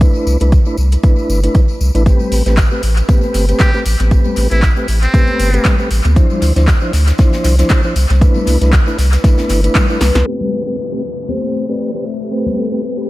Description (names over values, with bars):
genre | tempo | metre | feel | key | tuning
deep house | 117 BPM | 4/4 | swing 56% on 16ths | A minor | A4 = 441 Hz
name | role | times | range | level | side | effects
mellow tonewheel organ | stabs | 0.0-13.1 s | F3 to C5 | -19 LUFS | equal | fast rotary speaker, sidechain pumping, low-pass filter, tape echo
warm sub bass | bass | 0.0-10.2 s | G1 to D2 | -12 LUFS | equal | sidechain pumping
deep house drum kit | drums | 0.0-10.2 s | handclaps, hi-hat, snare drum | -22 LUFS | equal | overdrive, low-pass filter on hats, low-pass filter on snare, low-pass filter on room, tape echo
electronic kick drum | drums | 0.0-9.9 s | none | -11 LUFS | equal | overdrive
tambourine | percussion | 0.0-13.1 s | none | -32 LUFS | left 3 dB | tape echo
modern studio drum kit | drums | 2.1-10.1 s | hi-hat, snare drum | -32 LUFS | left 2 dB | none
congas | percussion | 2.2-12.6 s | none | -25 LUFS | left 5 dB | none
trumpet with metal mute | melody | 3.6-5.7 s | C4 to G4 | -22 LUFS | right 1 dB | dub echo
vibraphone with medium mallets | melody | 10.0-13.1 s | A4 to E5 | -23 LUFS | left 2 dB | tape echo
soft string machine | sustained chords | 10.8-13.1 s | A3 to B5 | -25 LUFS | left 1 dB | phaser, ensemble chorus, vintage 12-bit sampler grit, sidechain pumping
downlifter | sound effects | 10.3-13.1 s | none | -29 LUFS | left 1 dB | none
room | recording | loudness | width
small room ambience | echo-heavy mix, low-pass filter | -11 LUFS | side -17 dB against mid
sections
0.0-10.3 A section; 10.3-13.1 B section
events
drum fill 10.0; filter sweep on tonewheel organ 10.3-13.1; filter sweep on string machine 10.3-13.1; filter sweep 10.3-13.1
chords
0.0 Cmaj13; 2.1 Am9; 6.2 Dm9; 8.0 Cmaj13; 10.3 Am9